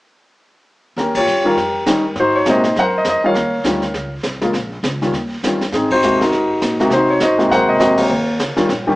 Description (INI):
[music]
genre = jazz piano trio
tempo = 202 BPM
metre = 4/4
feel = swing 60% on 8ths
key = unclear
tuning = A4 = 443 Hz
[part]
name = warm concert grand piano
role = melody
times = 1.0-9.0 s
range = C3 to Gb5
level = -14 LUFS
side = equal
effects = none
[part]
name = upright bass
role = bass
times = 1.0-9.0 s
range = Bb1 to C3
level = -26 LUFS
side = equal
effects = none
[part]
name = jazz brush drum kit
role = drums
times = 1.0-9.0 s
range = brushed snare drum, hi-hat, kick drum, ride cymbal, snare drum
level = -23 LUFS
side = equal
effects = none
[sound]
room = moderate large studio reverb, RT60 0.9 s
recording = band playing live in one room, small speaker sound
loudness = -14 LUFS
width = side -19 dB against mid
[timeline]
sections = 1.0-9.0 A section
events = band accent 1.1, 5.9, 7.9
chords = 1.0 Eb9; 2.2 Ab9; 3.3 Eb7sus2; 4.5 Bbm; 5.1 Eb9; 5.7 Ab9; 8.1 Eb9